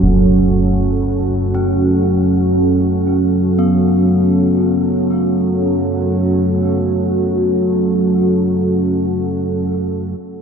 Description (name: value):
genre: ambient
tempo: free time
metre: none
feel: none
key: F# minor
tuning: A4 = 437 Hz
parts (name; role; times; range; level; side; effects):
- deep dark ambient pad; sustained chords; 0.0-10.4 s; C#4 to F#5; -17 LUFS; right 2 dB; chorus, built-in reverb
- gamelan-type bronze metallophone; arpeggios; 0.0-9.7 s; F#3 to C#4; -24 LUFS; left 3 dB; diffuse ambient delay
- analog drone; drone; 0.0-10.4 s; F#2 to F#3; -16 LUFS; equal; chorus
room: wet huge ambient reverb, RT60 7.6 s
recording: none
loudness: -13 LUFS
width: side -6 dB against mid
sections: 0.0-10.2 A section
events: filter sweep on synth drone 0.0-10.2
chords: 0.0 F#m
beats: free time